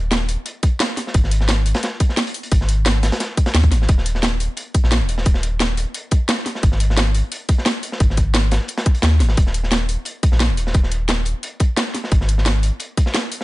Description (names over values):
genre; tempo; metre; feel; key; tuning
liquid drum and bass; 175 BPM; 4/4; straight; unclear; A4 = 436 Hz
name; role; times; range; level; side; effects
warm sub bass; bass; 0.0-12.7 s; Eb1 to Eb2; -18 LUFS; equal; none
crunchy breakbeat drum kit; drums; 0.1-13.4 s; hi-hat, snare drum; -26 LUFS; equal; high-pass filter on hats, high-pass filter on snare, high-pass filter on room
drum and bass drum kit; drums; 0.1-13.4 s; hi-hat, snare drum; -22 LUFS; equal; overdrive
electronic kick drum; drums; 0.6-13.0 s; none; -16 LUFS; equal; overdrive
room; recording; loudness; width
little or no reverb; nothing above 10.5 kHz; -16 LUFS; side -19 dB against mid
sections
0.0-13.4 A section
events
none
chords
none